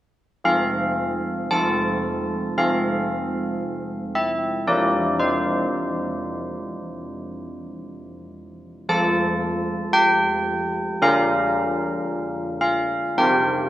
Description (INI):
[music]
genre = classical, tune for church bells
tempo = 57 BPM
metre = 4/4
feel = straight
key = F major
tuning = A4 = 437 Hz
[part]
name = old church bells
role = solo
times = 0.4-13.7 s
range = F3 to A5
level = -20 LUFS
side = equal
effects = none
[sound]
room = light reverb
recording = close, detailed microphones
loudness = -20 LUFS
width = side -14 dB against mid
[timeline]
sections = 0.5-13.7 A section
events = none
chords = 0.5 F; 4.7 C7/F; 8.9 F; 11.0 Bb/D; 13.2 Csus4